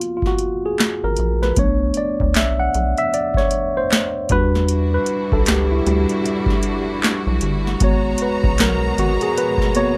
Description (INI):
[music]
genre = R&B, neo-soul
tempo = 77 BPM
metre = 4/4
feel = swing 60% on 16ths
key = unclear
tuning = A4 = 440 Hz
[part]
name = tine electric piano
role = accompaniment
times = 0.0-10.0 s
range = G3 to F#5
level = -22 LUFS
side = equal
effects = none
[part]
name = booming analog drum machine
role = drums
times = 0.0-10.0 s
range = handclaps, hi-hat, kick drum, snare drum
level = -23 LUFS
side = equal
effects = overdrive
[part]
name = rubbery square bass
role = bass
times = 1.0-9.2 s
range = G1 to E2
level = -22 LUFS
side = equal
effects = none
[part]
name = clear studio string section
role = sustained chords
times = 4.7-10.0 s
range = B2 to A#5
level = -29 LUFS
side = equal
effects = none
[sound]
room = light reverb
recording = none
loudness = -19 LUFS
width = mono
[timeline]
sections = 0.0-10.0 A section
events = tine electric piano solo 0.0-10.0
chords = 0.0 G#m9; 1.6 Bm7; 4.3 Em9; 7.8 G#m9